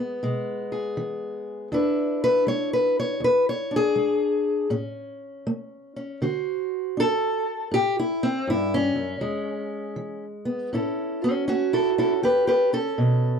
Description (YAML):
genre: acoustic country blues, solo or duo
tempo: 80 BPM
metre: 4/4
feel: swing 65% on 8ths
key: A major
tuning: A4 = 441 Hz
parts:
  - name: fingerpicked steel-string acoustic guitar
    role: solo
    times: 0.0-13.4 s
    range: E2 to C#5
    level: -22 LUFS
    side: equal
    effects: none
room: moderate small room reverb, RT60 0.6 s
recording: dry, close 1970s-style studio recording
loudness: -22 LUFS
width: side -6 dB against mid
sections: 0.0-10.7 A section; 10.7-13.4 B section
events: steel-string acoustic guitar solo 0.0-10.7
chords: 0.0 E7; 4.7 A; 6.2 D7; 7.7 F#m7; 9.2 E; 10.7 A7